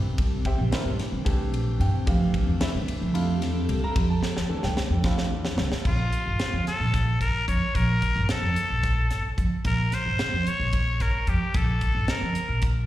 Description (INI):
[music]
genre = electric jazz fusion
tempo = 222 BPM (eighths)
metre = 7/8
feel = straight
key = unclear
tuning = A4 = 440 Hz
[part]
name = warm baby grand piano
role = accompaniment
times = 0.0-5.9 s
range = E3 to Bb5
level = -32 LUFS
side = left 1 dB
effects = slapback echo
[part]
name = granular cloud pad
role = sustained chords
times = 0.0-5.8 s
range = Bb2 to A4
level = -35 LUFS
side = left 1 dB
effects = built-in reverb
[part]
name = upright bass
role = bass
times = 0.0-12.9 s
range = G1 to G2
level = -26 LUFS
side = right 1 dB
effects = none
[part]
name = crisp fusion drum kit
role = drums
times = 0.2-12.8 s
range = crash cymbal, hi-hat, kick drum, ride cymbal, snare drum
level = -28 LUFS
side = equal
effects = none
[part]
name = trumpet with straight mute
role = melody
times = 5.9-12.7 s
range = F4 to Db5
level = -28 LUFS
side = left 2 dB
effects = slapback echo, analog delay
[sound]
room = little or no reverb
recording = live gig heard through the venue's PA, recital hall reverb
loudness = -22 LUFS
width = side -14 dB against mid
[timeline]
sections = 0.0-5.9 A section; 5.9-12.9 B section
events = drum fill 4.2-5.9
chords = 0.0 C7; 2.1 Fmaj9; 5.9 Bb5